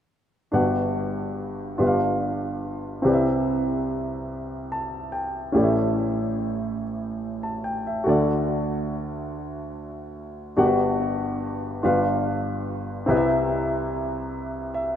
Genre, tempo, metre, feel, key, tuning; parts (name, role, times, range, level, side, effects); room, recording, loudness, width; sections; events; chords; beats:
gospel; 48 BPM (dotted quarters); 6/8; straight; G major; A4 = 445 Hz
warm grand piano; solo; 0.5-15.0 s; G1 to A5; -23 LUFS; equal; tape echo
moderate lush hall reverb, RT60 2.8 s; rough home demo mix; -22 LUFS; side -9 dB against mid
0.5-10.6 A section; 10.6-15.0 B section
grand piano fill 4.3-5.6, 14.3-15.0
0.5 Gmaj7; 1.8 G7; 3.0 Cmaj7; 5.6 A7; 8.1 D; 10.6 Gmaj7; 11.8 G7; 13.1 Cmaj7
| 0.52 1.78 | 3.04 4.30 | 5.55 6.81 | 8.06 9.32 | 10.57 11.82 | 13.07 14.32